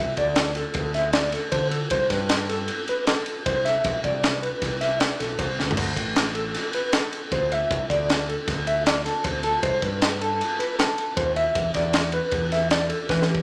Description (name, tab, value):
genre	math rock and midwest emo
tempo	156 BPM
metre	5/4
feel	straight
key	unclear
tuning	A4 = 441 Hz
part	mellow electric guitar	arpeggios	0.0-13.4 s	G4 to E5	-28 LUFS	equal	tremolo
part	growling fingered electric bass	bass	0.0-13.4 s	A1 to E3	-32 LUFS	equal	overdrive
part	crisp fusion drum kit	drums	0.2-13.4 s	crash cymbal, kick drum, ride cymbal, snare drum, toms	-27 LUFS	equal	none
room	moderate large studio reverb, RT60 1.2 s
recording	none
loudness	-24 LUFS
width	mono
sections	0.0-13.4 A section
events	drum fill 5.6, 13.1-13.4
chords	0.0 D5; 1.9 Cmaj9; 5.8 D5; 9.6 Cmaj7(no3); 11.6 E7(no3)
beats	0.37 0.76 1.14 1.53 | 1.92 2.30 2.69 3.08 3.46 | 3.85 4.23 4.62 5.00 5.39 | 5.78 6.16 6.55 6.93 7.32 | 7.70 8.09 8.47 8.86 9.24 | 9.63 10.01 10.40 10.78 11.17 | 11.55 11.94 12.32 12.71 13.09